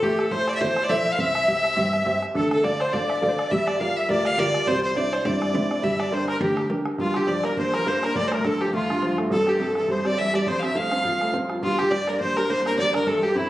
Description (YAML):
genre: celtic folk, Celtic reel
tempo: 207 BPM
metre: 4/4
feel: swing 56% on 8ths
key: G dorian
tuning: A4 = 440 Hz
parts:
  - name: rich fiddle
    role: melody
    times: 0.0-13.5 s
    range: E4 to F5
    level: -24 LUFS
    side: equal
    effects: slapback echo
  - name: musette accordion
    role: second line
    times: 0.0-13.5 s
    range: E4 to F5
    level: -28 LUFS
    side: left 1 dB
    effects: none
  - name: warm upright piano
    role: accompaniment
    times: 0.0-13.5 s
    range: C2 to F5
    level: -26 LUFS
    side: right 1 dB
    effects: none
  - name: upright bass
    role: bass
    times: 0.0-6.8 s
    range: G1 to G2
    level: -31 LUFS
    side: equal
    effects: none
  - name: bodhran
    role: percussion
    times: 0.0-13.4 s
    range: none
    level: -33 LUFS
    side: equal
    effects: none
  - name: warm cello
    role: drone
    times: 7.0-13.5 s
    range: G2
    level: -35 LUFS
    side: equal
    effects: none
room: wet recital hall reverb, RT60 1.5 s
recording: recorded on a phone in the room, club ambience, compression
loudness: -20 LUFS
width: side -15 dB against mid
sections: 0.0-7.0 A section; 7.0-13.5 B section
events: none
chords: 0.0 Am; 1.2 C; 2.3 Dm; 3.5 Gm7; 4.7 Cadd9; 5.8 Gm; 7.0 Gm7; 8.2 Dm; 9.3 C; 10.5 F; 11.6 Gm; 12.8 Cadd9/G